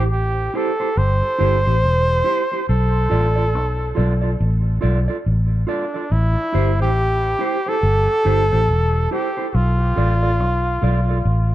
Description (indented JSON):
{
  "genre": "roots reggae",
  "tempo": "70 BPM",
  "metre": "4/4",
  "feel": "swing 63% on 16ths",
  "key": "A minor",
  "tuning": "A4 = 438 Hz",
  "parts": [
    { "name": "clear flugelhorn", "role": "melody", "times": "0.0-11.5 s", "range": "D4 to C5", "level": "-21 LUFS", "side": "equal", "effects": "tape echo" },
    { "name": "mellow electric guitar", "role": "accompaniment", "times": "0.0-11.2 s", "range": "E4 to D5", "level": "-26 LUFS", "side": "right 3 dB", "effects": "tape echo" },
    { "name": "vintage muted fingered electric bass", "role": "bass", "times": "0.0-11.5 s", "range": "E1 to B1", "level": "-17 LUFS", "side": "equal", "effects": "none" }
  ],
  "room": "light reverb, small room ambience",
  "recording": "dark, warm production",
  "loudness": "-16 LUFS",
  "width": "side -14 dB against mid",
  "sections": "0.0-11.5 A section",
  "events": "none",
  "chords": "0.0 Am7; 2.7 Bm7b5; 6.1 Am7; 9.5 Bm7b5",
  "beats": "0.10 0.96 1.82 | 2.67 3.53 4.39 5.25 | 6.10 6.96 7.82 8.68 | 9.53 10.39 11.25"
}